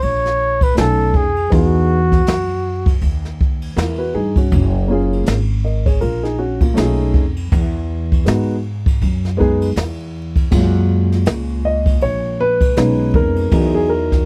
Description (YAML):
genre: hip hop, jazz-hop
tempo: 80 BPM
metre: 4/4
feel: swing 59% on 16ths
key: F# major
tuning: A4 = 439 Hz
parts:
  - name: breathy flugelhorn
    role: melody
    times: 0.0-3.0 s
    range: F#4 to C#5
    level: -20 LUFS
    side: equal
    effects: none
  - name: upright bass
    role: bass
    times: 0.0-14.2 s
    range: F#1 to G#2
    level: -21 LUFS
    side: equal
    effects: none
  - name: jazz brush drum kit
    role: drums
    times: 0.0-14.3 s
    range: crash cymbal, hi-hat, kick drum, ride cymbal, snare drum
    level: -19 LUFS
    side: equal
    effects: none
  - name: dark concert grand piano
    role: accompaniment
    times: 0.7-14.3 s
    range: A#2 to G#5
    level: -21 LUFS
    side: equal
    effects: none
room: little or no reverb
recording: dry, close 1970s-style studio recording, vinyl crackle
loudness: -17 LUFS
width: mono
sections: 0.0-10.5 A section; 10.5-14.3 B section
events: grand piano solo 10.5-14.3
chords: 0.0 F# (rootless); 0.8 B13; 1.5 Emaj9; 4.5 F#maj9; 6.8 B13; 7.5 Emaj9; 10.5 F#maj9; 12.8 B69; 13.5 Emaj9